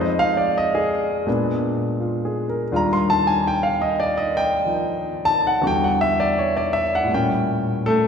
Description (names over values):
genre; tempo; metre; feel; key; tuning
solo jazz; 82 BPM; 4/4; swing 68% on 8ths, rubato; unclear; A4 = 441 Hz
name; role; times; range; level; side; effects
warm grand piano; solo; 0.0-8.1 s; Eb2 to C6; -18 LUFS; equal; none
room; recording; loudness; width
wet concert hall reverb, RT60 1.9 s; recorded in a church or concert hall, nothing above 10.4 kHz; -18 LUFS; side -6 dB against mid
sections
0.0-8.1 A section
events
grand piano solo 0.0-8.1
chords
0.0 Fm7; 1.3 Bb7b9; 2.7 Ebmaj9; 5.6 Em9; 7.1 A7b9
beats
0.54 1.27 2.00 | 2.72 3.44 4.16 4.89 | 5.62 6.35 7.09 7.85